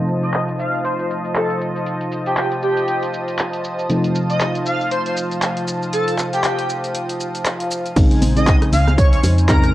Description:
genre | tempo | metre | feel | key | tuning
deep house | 118 BPM | 4/4 | swing 58% on 16ths | unclear | A4 = 440 Hz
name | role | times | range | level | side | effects
warm analog pad | sustained chords | 0.0-9.7 s | Eb4 to A5 | -25 LUFS | equal | chorus, tremolo, vintage 12-bit sampler grit, sidechain pumping, cassette tape
mellow FM electric piano | stabs | 0.0-9.7 s | C3 to Eb4 | -23 LUFS | equal | chorus, sidechain pumping, cassette tape
clear studio violin section | texture | 0.0-8.0 s | Eb5 to Eb6 | -38 LUFS | equal | cassette tape
punchy analog drum machine | drums | 0.1-9.7 s | crash cymbal, handclaps, hi-hat, rim click, shaker | -25 LUFS | equal | low-pass filter on hats, cassette tape, low-pass filter on perc, low-pass filter on snare, low-pass filter on cymbals
airy dreamy lead | melody | 0.2-9.7 s | G4 to F5 | -22 LUFS | equal | chorus, cassette tape, tape echo
woody FM bass | bass | 8.0-9.7 s | Bb1 to F2 | -17 LUFS | equal | sidechain pumping
electronic kick drum | drums | 8.0-9.6 s | none | -14 LUFS | equal | cassette tape
congas | percussion | 8.2-9.0 s | none | -27 LUFS | right 1 dB | none
room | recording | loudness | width
light reverb | home recording on cassette, low-pass filter | -16 LUFS | side -15 dB against mid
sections
0.0-8.0 A section; 8.0-9.7 B section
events
filter sweep on drum 0.0-8.0; filter sweep on FM electric piano 0.0-8.0; filter sweep 0.0-8.0; drop 8.0-9.7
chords
0.0 F7; 8.0 Bbm11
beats
0.34 0.85 1.35 | 1.86 2.37 2.88 3.39 | 3.90 4.41 4.91 5.42 | 5.93 6.44 6.95 7.46 | 7.96 8.47 8.98 9.49

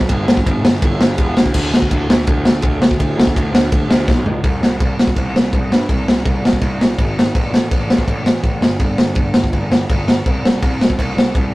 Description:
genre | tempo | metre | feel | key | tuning
punk rock | 165 BPM | 4/4 | straight | unclear | A4 = 440 Hz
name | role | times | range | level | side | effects
fuzz picked electric bass | bass | 0.0-11.5 s | E1 to G2 | -20 LUFS | equal | overdrive
raw garage drum kit | drums | 0.0-11.4 s | crash cymbal, kick drum, ride cymbal, snare drum, toms | -14 LUFS | equal | none
room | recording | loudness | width
light reverb | rough rehearsal-room recording, tube saturation | -13 LUFS | side -20 dB against mid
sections
0.0-4.4 A section; 4.4-11.5 B section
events
drum fill 4.1-4.4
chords
none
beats
| 0.11 0.47 0.83 1.19 | 1.55 1.92 2.28 2.64 | 3.00 3.36 3.72 4.09 | 4.45 4.81 5.17 5.54 | 5.90 6.26 6.62 6.99 | 7.35 7.71 8.07 8.44 | 8.80 9.16 9.53 9.89 | 10.25 10.62 10.98 11.34

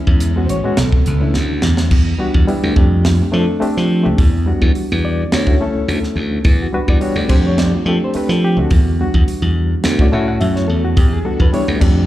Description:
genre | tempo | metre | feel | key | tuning
electric jazz fusion | 106 BPM | 4/4 | straight | unclear | A4 = 441 Hz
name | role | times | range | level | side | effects
bright reed electric piano | accompaniment | 0.0-12.1 s | G3 to F#5 | -19 LUFS | left 2 dB | fast tremolo, slapback echo
string machine, violas | sustained chords | 0.0-1.9, 11.0-12.1 s | D3 to A4 | -28 LUFS | right 2 dB | ensemble chorus
glassy slap bass | bass | 0.1-12.1 s | A1 to F3 | -16 LUFS | equal | none
crisp fusion drum kit | drums | 0.1-12.0 s | crash cymbal, hi-hat, kick drum, snare drum | -16 LUFS | equal | none
room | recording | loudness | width
studio ambience | live gig heard through the venue's PA, club reverb | -13 LUFS | side -14 dB against mid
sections
0.0-1.9 A section; 1.9-12.1 A section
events
drum fill 1.4-1.9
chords
0.0 Amaj9; 0.8 Bm11; 1.9 Em9; 2.8 F69; 4.2 Em9; 5.3 Dmaj7sus2; 6.5 Em9; 7.3 F69; 8.7 Em9; 9.8 Dmaj9; 11.0 Em9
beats
0.21 0.78 1.35 | 1.92 2.49 3.06 3.62 | 4.19 4.76 5.32 5.89 | 6.45 7.02 7.58 8.15 | 8.71 9.28 9.84 10.40 | 10.97 11.53

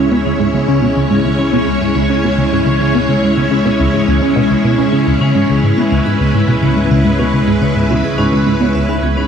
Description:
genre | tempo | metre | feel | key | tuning
ambient, sequencer-driven space music | 106 BPM | 4/4 | straight | C# minor | A4 = 440 Hz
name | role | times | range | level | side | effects
string machine, full ensemble | sustained chords | 0.0-9.3 s | G#3 to C#5 | -14 LUFS | left 1 dB | ensemble chorus
vibraphone with medium hard mallets | arpeggios | 0.0-9.3 s | C#4 to G#5 | -25 LUFS | equal | auto-pan, analog delay
tight sequenced synth | riff | 0.0-9.3 s | C#2 to C#3 | -14 LUFS | equal | chorus, phaser, analog delay
fat analog bass | bass | 0.0-9.3 s | C#2 | -24 LUFS | equal | none
bubbling stepped-filter texture | texture | 0.0-9.3 s | C#4 to C#5 | -24 LUFS | equal | chorus, built-in reverb
room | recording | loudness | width
wet huge ambient reverb, RT60 8.7 s | dreamy mix soaked in reverb | -11 LUFS | side -7 dB against mid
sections
0.0-9.3 A section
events
fade-in on vibraphone 0.0-9.3; fade-in on analog synth bass 0.0-9.3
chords
0.0 C#m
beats
0.26 | 0.82 1.39 1.96 2.52 | 3.09 3.65 4.22 4.79 | 5.35 5.92 6.48 7.05 | 7.62 8.18 8.75

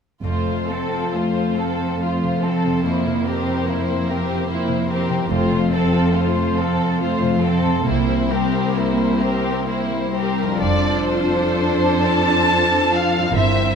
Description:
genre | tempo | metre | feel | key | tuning
classical, slow romantic movement for symphony orchestra | 41-49 BPM (dotted quarters) | 6/8 | rubato | F major | A4 = 440 Hz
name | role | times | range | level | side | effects
dark studio violin section | melody | 0.2-13.8 s | A4 to A5 | -24 LUFS | left 2 dB | none
warm studio violin section | second line | 0.2-13.8 s | E4 to C5 | -25 LUFS | equal | none
warm studio viola section | accompaniment | 0.2-13.8 s | A3 to F4 | -23 LUFS | equal | none
concert harp | arpeggios | 0.2-13.8 s | F2 to F5 | -25 LUFS | left 6 dB | none
warm studio cello section | bass | 0.2-13.8 s | C2 to G2 | -23 LUFS | right 2 dB | none
warm studio double bass section | bass | 0.2-1.1, 5.3-13.8 s | F1 to C2 | -24 LUFS | right 4 dB | none
room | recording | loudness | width
wet scoring stage reverb, RT60 2.0 s | none | -17 LUFS | side -6 dB against mid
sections
0.2-10.6 A section; 10.6-13.8 B section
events
none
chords
0.2 F; 2.8 C7/F; 5.3 F; 7.9 C7; 10.6 F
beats
| 0.23 1.57 | 2.84 4.07 | 5.30 6.58 | 7.86 9.20 | 10.60 12.03 | 13.35

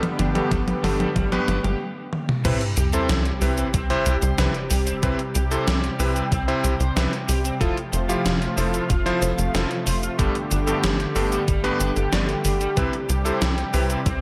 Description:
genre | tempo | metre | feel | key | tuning
synthwave | 93 BPM | 4/4 | straight | C major | A4 = 443 Hz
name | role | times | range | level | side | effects
warm analog pad | sustained chords | 0.0-14.2 s | C3 to G4 | -30 LUFS | equal | lush chorus, sidechain pumping
clear electric grand piano | stabs | 0.0-14.0 s | G2 to D5 | -29 LUFS | equal | tape echo
gated 80s digital drum machine | drums | 0.0-14.2 s | cabasa, crash cymbal, hi-hat, snare drum, toms | -29 LUFS | equal | gated reverb, gated reverb snare, overdrive
raw garage guitar | riff | 0.2-14.2 s | G3 to F5 | -34 LUFS | equal | overdrive, analog chorus, digital delay
tight sequencer bass | bass | 0.2-14.2 s | F1 to C2 | -26 LUFS | equal | none
electronic kick drum | drums | 0.5-14.2 s | none | -28 LUFS | equal | overdrive
sub drop | sound effects | 2.4-5.0 s | none | -32 LUFS | equal | none
room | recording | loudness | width
moderate lush hall reverb, RT60 1.8 s | none | -22 LUFS | mono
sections
0.0-2.4 A section; 2.4-14.2 B section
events
drum fill 0.0-1.8, 2.1-2.4; stop 1.8-2.4; impact 2.4-5.0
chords
0.0 Gadd9; 2.4 Cmaj7; 7.6 Fmaj7; 10.2 Gadd9; 12.8 Cmaj7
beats
0.51 1.16 1.80 | 2.45 3.09 3.74 4.38 | 5.03 5.67 6.32 6.96 | 7.61 8.26 8.90 9.54 | 10.19 10.84 11.48 12.13 | 12.77 13.42 14.06

